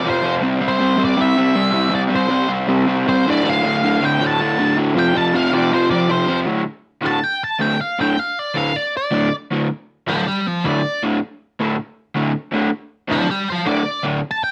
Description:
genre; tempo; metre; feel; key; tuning
rock; 159 BPM; 4/4; straight; D minor; A4 = 439 Hz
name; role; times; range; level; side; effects
octave-fuzz lead guitar; melody; 0.0-14.5 s; C5 to A5; -22 LUFS; equal; distortion, cassette tape
crunchy overdriven guitar; riff; 0.0-14.2 s; D2 to C4; -20 LUFS; equal; cassette tape
room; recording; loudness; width
moderate studio reverb, RT60 0.5 s; home recording on cassette; -19 LUFS; mono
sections
0.0-6.5 A section; 6.5-14.5 B section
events
lead electric guitar solo 6.5-14.5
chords
0.4 C; 3.3 Dm; 5.0 F5; 6.5 D5

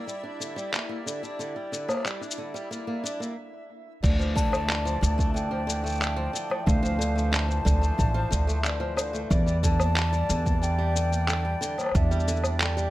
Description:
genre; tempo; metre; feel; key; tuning
folktronica; 91 BPM; 4/4; straight; D minor; A4 = 440 Hz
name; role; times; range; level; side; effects
accordion; sustained chords; 0.0-12.9 s; E3 to D5; -37 LUFS; left 2 dB; light tremolo tuning, plate reverb
picked swing-style acoustic guitar; arpeggios; 0.0-12.9 s; D3 to D4; -34 LUFS; right 1 dB; tape echo, plate reverb
backwards swelling texture; texture; 0.0-3.4 s; E4 to E5; -43 LUFS; left 3 dB; built-in reverb, plate reverb
lo-fi sampler-style drum kit; drums; 0.1-12.9 s; crash cymbal, handclaps, shaker, woodblock; -30 LUFS; left 1 dB; none
vibraphone with medium hard mallets; second line; 4.0-12.9 s; D5 to A5; -38 LUFS; left 2 dB; tape echo, plate reverb
upright bass; bass; 4.0-12.9 s; A1 to E2; -25 LUFS; equal; none
electronic kick drum; drums; 4.0-12.1 s; none; -26 LUFS; equal; none
mellow hollow silver concert flute; melody; 4.4-12.9 s; E5 to A5; -32 LUFS; left 1 dB; tape echo, plate reverb
room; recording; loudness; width
light reverb; none; -24 LUFS; side -16 dB against mid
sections
0.0-4.0 A section; 4.0-12.9 B section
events
break 3.4-4.0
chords
0.0 Em7b5; 4.0 Dmadd9; 9.3 Em7b5

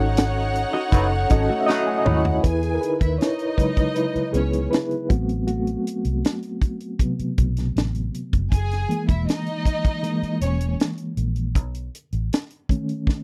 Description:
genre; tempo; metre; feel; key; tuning
lush 1970s-style soul; 79 BPM; 4/4; straight; E major; A4 = 439 Hz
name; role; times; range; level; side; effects
warm studio string section; second line; 0.0-10.7 s; C#4 to G#5; -30 LUFS; equal; none
reed electric piano; accompaniment; 0.0-13.2 s; C3 to B5; -27 LUFS; equal; fast tremolo
vintage muted fingered electric bass; bass; 0.0-12.3 s; E1 to E2; -26 LUFS; equal; none
tight funk drum kit; drums; 0.2-13.2 s; hi-hat, kick drum, snare drum, toms; -23 LUFS; equal; none
semi-hollow electric guitar; riff; 0.7-2.4 s; A3 to D#5; -30 LUFS; equal; tremolo
warm horn section; stabs; 0.9-2.2 s; A2 to D#4; -29 LUFS; equal; none
vibraphone with hard mallets; texture; 0.9-2.8 s; A4; -37 LUFS; equal; none
room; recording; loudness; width
little or no reverb; dry, close 1970s-style studio recording; -23 LUFS; mono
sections
0.0-2.4 A section; 2.4-13.2 B section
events
reed electric piano fill 0.9-2.4; drum fill 1.7-2.4, 13.1; reed electric piano solo 2.4-13.2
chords
0.0 B9; 2.4 E6; 5.1 Am6; 8.5 F#9 (rootless); 11.6 B9

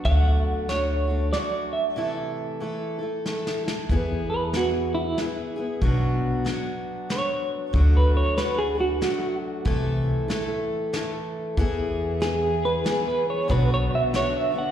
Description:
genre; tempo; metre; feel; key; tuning
folk; 94 BPM; 3/4; swing 60% on 8ths; E mixolydian; A4 = 439 Hz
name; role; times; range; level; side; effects
picked steel-string acoustic guitar; accompaniment; 0.0-14.7 s; B2 to A4; -28 LUFS; left 2 dB; slapback echo
soft brush drum kit; drums; 0.0-14.3 s; hi-hat, kick drum, snare drum; -29 LUFS; equal; none
semi-hollow electric guitar; melody; 0.1-14.7 s; E4 to F#5; -26 LUFS; right 2 dB; tremolo, slapback echo
upright bass; bass; 0.1-13.9 s; B1 to E2; -23 LUFS; equal; none
warm chamber string section; sustained chords; 11.6-14.7 s; D3 to G#4; -35 LUFS; equal; none
room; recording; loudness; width
light reverb, studio reverb; live gig heard through the venue's PA, recital hall reverb; -22 LUFS; side -10 dB against mid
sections
0.0-3.9 A section; 3.9-14.7 B section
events
break 2.0-3.9; drum fill 3.3-3.9; clean electric guitar solo 3.9-14.7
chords
0.1 D; 2.0 Am/C; 3.9 E; 5.8 Bm; 7.7 D; 9.7 Am/C; 11.6 E; 13.5 Bm

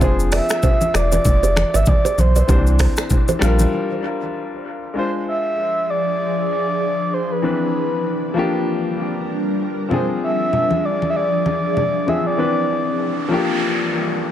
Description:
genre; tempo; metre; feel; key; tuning
afrobeats; 97 BPM; 4/4; swing 58% on 16ths; unclear; A4 = 436 Hz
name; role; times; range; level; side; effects
breathy flute-like synth lead; melody; 0.0-13.5 s; B4 to E5; -22 LUFS; right 1 dB; chorus, dub echo
clear grand piano; accompaniment; 0.0-14.3 s; E3 to C5; -23 LUFS; left 4 dB; dub echo
nylon-string guitar; riff; 0.0-3.5 s; G4 to E5; -26 LUFS; right 6 dB; dub echo
warm sub bass; bass; 0.0-3.7 s; E1 to C2; -17 LUFS; equal; none
afro-pop drum kit; drums; 0.0-3.7 s; finger snaps, hi-hat, kick drum, rim click, shaker; -20 LUFS; equal; none
congas; percussion; 0.0-3.7, 9.9-12.2 s; none; -25 LUFS; left 2 dB; dub echo
ethereal airy pad; sustained chords; 5.7-14.3 s; F3 to Bb4; -24 LUFS; equal; ensemble chorus, built-in reverb, sidechain pumping
noise sweep; sound effects; 12.9-14.3 s; none; -25 LUFS; right 1 dB; none
room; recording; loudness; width
moderate spring reverb, RT60 1.6 s; echo-heavy mix; -16 LUFS; side -11 dB against mid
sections
0.0-5.0 A section; 5.0-14.3 B section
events
break 3.7-5.0; noise sweep 12.9-14.3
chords
0.0 Fm6; 2.5 Cmaj9; 3.4 Bb6; 5.0 Fm6; 7.4 Cmaj9; 8.4 Bb6; 9.9 Fm6; 12.4 Cmaj9; 13.3 Bb6

